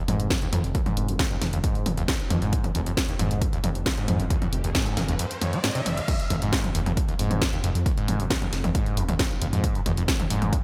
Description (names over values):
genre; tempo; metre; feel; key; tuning
driving peak-time techno; 135 BPM; 4/4; straight; F minor; A4 = 440 Hz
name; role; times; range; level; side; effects
overdriven acid bass; riff; 0.0-10.6 s; F1 to Ab3; -31 LUFS; equal; subtle chorus, sidechain pumping, digital delay
detuned saw bass; bass; 0.1-10.5 s; F1 to F2; -30 LUFS; equal; sidechain pumping
techno drum kit; drums; 0.1-10.6 s; crash cymbal, hi-hat, snare drum, toms; -31 LUFS; equal; gated reverb
electronic kick drum; drums; 0.3-10.6 s; none; -30 LUFS; equal; none
riser; sound effects; 3.8-6.1 s; none; -38 LUFS; equal; none
room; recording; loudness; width
light reverb; bright 1980s-style digital production; -25 LUFS; mono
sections
0.0-6.1 A section; 6.1-10.6 B section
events
filter sweep on acid bass 0.0-6.1; riser 3.8-6.1; drop 6.1-10.6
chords
0.0 Fm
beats
0.30 | 0.75 1.19 1.64 2.08 | 2.53 2.97 3.42 3.86 | 4.30 4.75 5.19 5.64 | 6.08 6.53 6.97 7.42 | 7.86 8.30 8.75 9.19 | 9.64 10.08 10.53